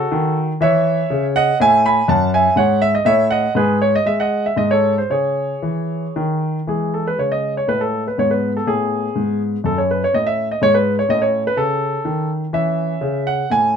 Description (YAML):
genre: classical, baroque-style suite movement for grand piano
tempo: 112-127 BPM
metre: 3/4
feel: rubato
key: C# minor, E major from 6.7 s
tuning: A4 = 441 Hz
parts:
  - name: warm grand piano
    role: solo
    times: 0.0-13.8 s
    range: F#2 to B5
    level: -15 LUFS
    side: equal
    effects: none
room: moderate studio reverb, RT60 0.8 s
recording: none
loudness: -15 LUFS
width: side -7 dB against mid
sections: 0.0-6.7 A section; 6.7-13.8 A section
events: none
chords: 0.0 F#m; 0.6 C#m; 2.1 F#m; 3.5 G#m7; 4.6 G#add11; 5.1 C#m; 6.7 E; 8.2 G#m; 9.6 F#m; 11.1 A; 12.5 C#m